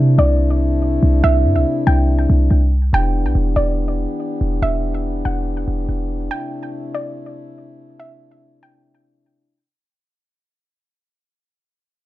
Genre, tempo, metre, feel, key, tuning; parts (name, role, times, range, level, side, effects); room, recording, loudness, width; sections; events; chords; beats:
hip hop, atmospheric cloud-rap; 142 BPM; 4/4; half-time; A4 = 440 Hz
soft round pluck; melody; 0.0-9.2 s; D5 to G5; -23 LUFS; right 2 dB; chorus, plate reverb, digital delay
dark brass ensemble; sustained chords; 0.0-9.7 s; C3 to G4; -22 LUFS; left 2 dB
clean 808-style bass; bass; 0.0-6.3 s; E1 to C3; -16 LUFS; equal
light reverb; -15 LUFS; side -16 dB against mid
0.0-2.9 A section; 2.9-9.7 B section
fade-out 2.9-9.7
0.0 C69; 2.9 Em7; 6.3 C69
0.39 0.82 | 1.24 1.66 2.08 2.51 | 2.93 3.35 3.77 4.20 | 4.62 5.04 5.46 5.89 | 6.31 6.73 7.15 7.58 | 8.00 8.42 8.84 9.27